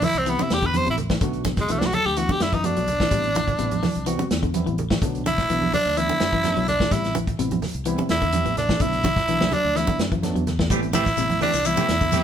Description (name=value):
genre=afrobeat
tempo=126 BPM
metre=4/4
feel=straight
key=A dorian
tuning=A4 = 441 Hz
part: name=raspy tenor saxophone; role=melody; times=0.0-12.2 s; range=G#3 to C5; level=-22 LUFS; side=right 1 dB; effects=none
part: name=electric guitar at the edge of break-up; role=arpeggios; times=0.0-12.2 s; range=C3 to G3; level=-29 LUFS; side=left 6 dB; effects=none
part: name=warm soul drum kit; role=drums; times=0.0-12.2 s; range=hi-hat, kick drum, snare drum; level=-26 LUFS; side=equal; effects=none
part: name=congas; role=percussion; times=0.0-12.2 s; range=none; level=-29 LUFS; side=right 5 dB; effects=none
part: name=fingered electric bass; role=bass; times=0.1-12.2 s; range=A1 to F#2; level=-28 LUFS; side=equal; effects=none
part: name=tine electric piano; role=accompaniment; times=0.3-12.2 s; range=F#3 to G4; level=-32 LUFS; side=right 1 dB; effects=slow stereo tremolo
part: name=clean electric guitar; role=stabs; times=10.7-12.2 s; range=E3 to G4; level=-28 LUFS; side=right 6 dB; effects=none
part: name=shekere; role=percussion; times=10.7-12.2 s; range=none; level=-31 LUFS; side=left 9 dB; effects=none
room=moderate large studio reverb, RT60 1.0 s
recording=band playing live in one room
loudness=-20 LUFS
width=side -9 dB against mid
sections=0.0-12.2 A section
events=tenor saxophone solo 0.0-12.2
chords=0.0 Am7; 1.2 Bm7; 3.1 Am7; 5.0 Bm7; 6.9 Am7; 8.8 Bm7; 10.7 Am7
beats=0.27 0.74 | 1.22 1.69 2.17 2.65 | 3.12 3.60 4.07 4.55 | 5.02 5.50 5.97 6.44 | 6.92 7.39 7.87 8.34 | 8.81 9.29 9.76 10.23 | 10.71 11.18 11.65 12.13